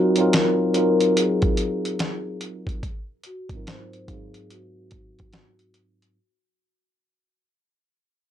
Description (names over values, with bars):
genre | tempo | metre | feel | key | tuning
lo-fi hip hop | 72 BPM | 4/4 | swing 63% on 16ths | unclear | A4 = 440 Hz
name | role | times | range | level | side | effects
vibraphone with soft mallets | melody | 0.0-5.7 s | Gb4 to C5 | -24 LUFS | left 5 dB | low-pass filter, plate reverb
tine electric piano | accompaniment | 0.0-6.2 s | Ab2 to F5 | -23 LUFS | right 2 dB | medium stereo tremolo, cassette tape, low-pass filter, plate reverb
dusty soul sampler-style drum kit | drums | 0.2-6.2 s | hi-hat, kick drum, snare drum | -25 LUFS | equal | overdrive
room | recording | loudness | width
light reverb | dry, gritty hardware recording | -19 LUFS | side -10 dB against mid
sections
0.0-6.2 A section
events
fade-out 0.0-6.2; filter sweep 0.0-6.2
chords
0.0 Ebm69; 2.8 Ab13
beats
0.33 1.16 2.00 | 2.83 3.66 4.50 5.33